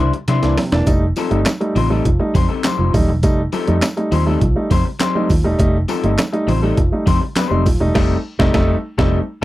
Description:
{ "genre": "funk", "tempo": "102 BPM", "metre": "4/4", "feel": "straight", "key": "unclear", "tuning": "A4 = 440 Hz", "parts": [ { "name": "electric guitar through a small old amp", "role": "accompaniment", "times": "0.0-9.4 s", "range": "G3 to C5", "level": "-22 LUFS", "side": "left 6 dB", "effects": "none" }, { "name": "warm upright piano", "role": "stabs", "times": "0.0-9.4 s", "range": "C3 to Eb4", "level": "-19 LUFS", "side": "right 1 dB", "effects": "none" }, { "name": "vintage muted fingered electric bass", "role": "bass", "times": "0.0-9.2 s", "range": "Eb1 to C3", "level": "-18 LUFS", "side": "equal", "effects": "none" }, { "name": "breakbeat sampler-style drum kit", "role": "drums", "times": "0.1-9.2 s", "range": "crash cymbal, handclaps, hi-hat, kick drum, snare drum", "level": "-19 LUFS", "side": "equal", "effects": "none" }, { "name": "congas", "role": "percussion", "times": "0.3-7.8 s", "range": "none", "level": "-27 LUFS", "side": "right 3 dB", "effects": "none" }, { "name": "tambourine", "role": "percussion", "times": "0.9-7.8 s", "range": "none", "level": "-36 LUFS", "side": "left 5 dB", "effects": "none" } ], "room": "little or no reverb", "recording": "dry, close 1970s-style studio recording", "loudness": "-14 LUFS", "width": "side -16 dB against mid", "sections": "0.9-9.4 A section", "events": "drum fill 0.3-0.9; band accent 8.0-9.4; silent gap 9.1-9.4", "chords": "0.0 C9; 0.9 F9" }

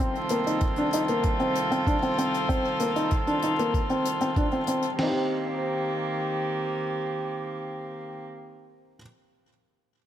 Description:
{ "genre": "piano and strings electronica", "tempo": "96 BPM", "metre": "4/4", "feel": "straight", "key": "C dorian", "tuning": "A4 = 440 Hz", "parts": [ { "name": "warm string quartet", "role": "sustained chords", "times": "0.0-8.2 s", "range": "C2 to A4", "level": "-28 LUFS", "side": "equal", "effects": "sidechain pumping" }, { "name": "felt-muted upright piano", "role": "riff", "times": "0.0-9.0 s", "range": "Bb3 to C5", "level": "-27 LUFS", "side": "left 1 dB", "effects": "digital delay" }, { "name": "hi-hat", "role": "drums", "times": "0.2-5.0 s", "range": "none", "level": "-40 LUFS", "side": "left 6 dB", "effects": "none" }, { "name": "lo-fi sampler-style drum kit", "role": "drums", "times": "0.6-5.1 s", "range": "crash cymbal, kick drum, snare drum", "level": "-27 LUFS", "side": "equal", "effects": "none" } ], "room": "moderate lush hall reverb, RT60 2.3 s", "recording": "none", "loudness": "-24 LUFS", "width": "side -11 dB against mid", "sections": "0.0-5.0 A section; 5.0-7.5 B section", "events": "none", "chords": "0.0 F7/C; 5.0 Cm7" }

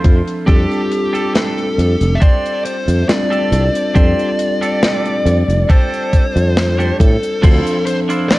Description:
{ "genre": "vaporwave", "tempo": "69 BPM", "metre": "4/4", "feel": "straight", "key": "F major", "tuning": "A4 = 442 Hz", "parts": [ { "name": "bell-like tine electric piano", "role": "accompaniment", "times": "0.0-8.4 s", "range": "F3 to E5", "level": "-20 LUFS", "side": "equal", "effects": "wide subtle chorus, tape echo" }, { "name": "clean electric guitar", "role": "riff", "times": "0.0-8.4 s", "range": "D4 to C5", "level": "-25 LUFS", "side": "right 2 dB", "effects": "lush chorus, low-pass filter, tape echo" }, { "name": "sustaining fretless electric bass", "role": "bass", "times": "0.0-7.6 s", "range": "F1 to A2", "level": "-14 LUFS", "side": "equal", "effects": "none" }, { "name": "electronic kick drum", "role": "drums", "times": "0.0-7.6 s", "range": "none", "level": "-10 LUFS", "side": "equal", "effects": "none" }, { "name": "tight metal drum kit", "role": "drums", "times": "0.0-8.4 s", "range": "crash cymbal, hi-hat, snare drum", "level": "-21 LUFS", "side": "equal", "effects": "low-pass filter on hats, low-pass filter on cymbals, low-pass filter on snare, low-pass filter on room" }, { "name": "dark smooth lead guitar", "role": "melody", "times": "0.5-8.4 s", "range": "G4 to E5", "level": "-19 LUFS", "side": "equal", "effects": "overdrive, tape echo" } ], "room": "light reverb, small room ambience", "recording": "echo-heavy mix, cassette tape", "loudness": "-12 LUFS", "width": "side -19 dB against mid", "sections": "0.0-7.4 A section", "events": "none", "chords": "0.5 F69; 7.4 Dm9" }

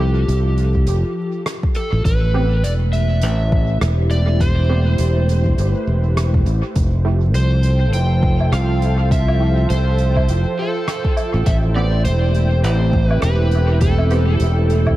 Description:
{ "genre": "ambient dub", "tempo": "102 BPM", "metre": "4/4", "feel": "swing 58% on 16ths", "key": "A minor", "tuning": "A4 = 439 Hz", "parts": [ { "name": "overdriven slide guitar", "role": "melody", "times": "0.0-14.9 s", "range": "G4 to G5", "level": "-25 LUFS", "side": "right 1 dB", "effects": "dub echo" }, { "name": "warm analog pad", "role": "sustained chords", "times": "0.0-15.0 s", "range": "F3 to G5", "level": "-25 LUFS", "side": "equal", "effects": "chorus" }, { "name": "filtered dub chord stab", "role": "stabs", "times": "0.0-14.2 s", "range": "A3 to G4", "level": "-30 LUFS", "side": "right 3 dB", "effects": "ensemble chorus, dub echo" }, { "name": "modern bright fingered electric bass", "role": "bass", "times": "0.0-15.0 s", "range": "E1 to C2", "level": "-16 LUFS", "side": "equal", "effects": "none" }, { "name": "soft-mallet drum kit", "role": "drums", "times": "0.3-15.0 s", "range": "hi-hat, rim click, woodblock", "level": "-30 LUFS", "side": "equal", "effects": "dub echo" }, { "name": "electronic kick drum", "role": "drums", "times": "0.8-15.0 s", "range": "none", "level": "-19 LUFS", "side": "equal", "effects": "overdrive" } ], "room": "small room ambience", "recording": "echo-heavy mix, vinyl crackle", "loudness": "-14 LUFS", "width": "side -16 dB against mid", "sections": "0.0-15.0 A section", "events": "none", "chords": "0.0 Fadd9; 2.0 Am7; 6.8 Fadd9; 11.5 Am7" }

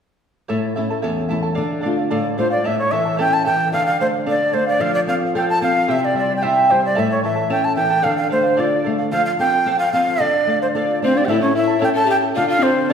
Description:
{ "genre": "andean folk", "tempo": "111 BPM", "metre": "2/4", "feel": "straight", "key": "D minor", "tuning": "A4 = 442 Hz", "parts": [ { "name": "charango", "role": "accompaniment", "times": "0.5-12.9 s", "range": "E4 to A5", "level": "-23 LUFS", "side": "right 3 dB", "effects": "none" }, { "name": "flamenco guitar", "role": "accompaniment", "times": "0.5-12.9 s", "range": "E2 to A4", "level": "-22 LUFS", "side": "left 3 dB", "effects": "none" }, { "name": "breathy bright large quena", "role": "melody", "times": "2.4-12.9 s", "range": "C5 to A5", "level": "-18 LUFS", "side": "equal", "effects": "none" }, { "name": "breathy pan flute", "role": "second line", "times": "11.0-12.9 s", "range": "C4 to C#5", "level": "-19 LUFS", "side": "left 2 dB", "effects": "none" } ], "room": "wet recital hall reverb, RT60 1.6 s", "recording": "heard from further back in the room", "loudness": "-16 LUFS", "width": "side -7 dB against mid", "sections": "0.5-2.7 A section; 2.7-11.3 B section; 11.3-12.9 B section", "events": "none", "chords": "0.5 A; 1.6 Dm; 2.7 A; 3.7 Dm; 4.8 F; 5.9 C; 7.0 A; 8.0 Dm; 9.1 F; 10.2 Dm; 11.3 A; 12.4 Dm" }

